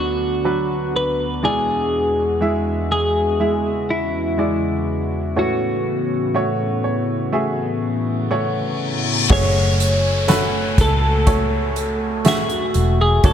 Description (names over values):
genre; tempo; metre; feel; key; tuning
pop ballad; 61 BPM; 4/4; straight; F# minor; A4 = 440 Hz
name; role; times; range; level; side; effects
twelve-string electric guitar; melody; 0.0-13.3 s; E4 to C#5; -21 LUFS; equal; spring reverb
clear baby grand piano; accompaniment; 0.0-13.3 s; D2 to F#5; -24 LUFS; right 2 dB; none
warm analog pad; sustained chords; 0.0-13.3 s; D2 to G#5; -24 LUFS; left 1 dB; wide subtle chorus
reverse cymbal and downlifter; sound effects; 8.6-13.3 s; none; -26 LUFS; left 3 dB; none
vintage muted fingered electric bass; bass; 9.3-13.3 s; E1 to C#2; -20 LUFS; equal; none
soft-mallet drum kit; drums; 9.3-13.3 s; crash cymbal, hi-hat, kick drum, snare drum; -19 LUFS; equal; none
room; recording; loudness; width
light reverb, small room reverb; none; -17 LUFS; side -9 dB against mid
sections
0.0-9.3 A section; 9.3-13.3 B section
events
grand piano fill 6.4-9.3; reverse cymbal 8.6-9.3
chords
0.0 D6; 1.4 E7; 5.4 A6; 9.3 F#madd9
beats
0.45 | 1.44 2.42 3.40 4.39 | 5.37 6.35 7.34 8.32 | 9.30 10.29 11.27 12.26 | 13.24